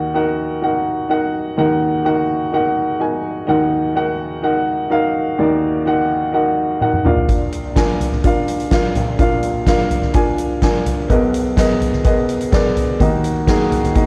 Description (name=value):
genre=piano-driven pop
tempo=126 BPM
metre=4/4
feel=straight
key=Eb harmonic minor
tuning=A4 = 442 Hz
part: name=dark upright piano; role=accompaniment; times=0.0-14.1 s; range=Bb1 to Ab5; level=-18 LUFS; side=equal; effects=none
part: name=soft-mallet drum kit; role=drums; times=6.8-14.1 s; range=hi-hat, kick drum, snare drum, toms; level=-20 LUFS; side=equal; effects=none
room=moderate large studio reverb, RT60 0.8 s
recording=worn, warbling old tape, cassette tape, warbly pitch drift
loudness=-17 LUFS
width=mono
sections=0.0-14.1 A section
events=drum fill 6.8-7.3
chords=0.0 Ebm; 7.0 Bb; 11.1 Abmadd9/Cb; 13.0 Ebm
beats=0.14 0.62 1.10 | 1.57 2.05 2.52 3.00 | 3.48 3.95 4.43 4.91 | 5.38 5.86 6.33 6.81 | 7.29 7.76 8.24 8.72 | 9.19 9.67 10.14 10.62 | 11.10 11.57 12.05 12.53 | 13.00 13.48 13.95